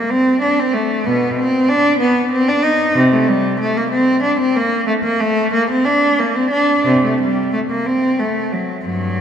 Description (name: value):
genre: classical, baroque-style suite movement for unaccompanied cello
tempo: 92 BPM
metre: 3/4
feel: uneven beats, rubato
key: G minor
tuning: A4 = 436 Hz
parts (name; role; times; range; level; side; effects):
- rich cello; solo; 0.0-9.2 s; G2 to Eb4; -14 LUFS; equal; none
room: wet church reverb, RT60 3.5 s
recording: recorded in a church or concert hall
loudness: -14 LUFS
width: side -8 dB against mid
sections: 0.0-9.2 A section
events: none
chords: none